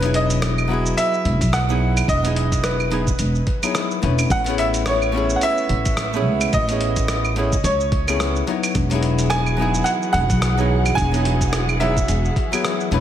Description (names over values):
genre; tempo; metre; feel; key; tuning
sunset chillout; 108 BPM; 4/4; swing 58% on 16ths; E major; A4 = 440 Hz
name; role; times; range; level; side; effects
bright grand piano; melody; 0.0-12.9 s; B4 to G#5; -24 LUFS; right 1 dB; tape echo, shimmer reverb
archtop guitar, miked and amplified; accompaniment; 0.0-13.0 s; F#3 to C#5; -24 LUFS; moving between left 9 dB and right 7 dB; auto-pan, digital delay, shimmer reverb
upright bass; bass; 0.0-13.0 s; E1 to C#2; -21 LUFS; equal; none
dusty soul sampler-style drum kit; drums; 0.0-13.0 s; claves, hi-hat, rim click, shaker; -26 LUFS; right 2 dB; none
electronic kick drum; drums; 1.4-12.5 s; none; -23 LUFS; equal; none
muted studio string section; sustained chords; 8.7-13.0 s; E3 to F#5; -29 LUFS; equal; shimmer reverb
room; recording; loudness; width
light reverb, digital ambience; none; -17 LUFS; side -10 dB against mid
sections
0.0-13.0 A section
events
none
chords
0.0 Emaj9; 4.3 Amaj9; 8.8 Emaj9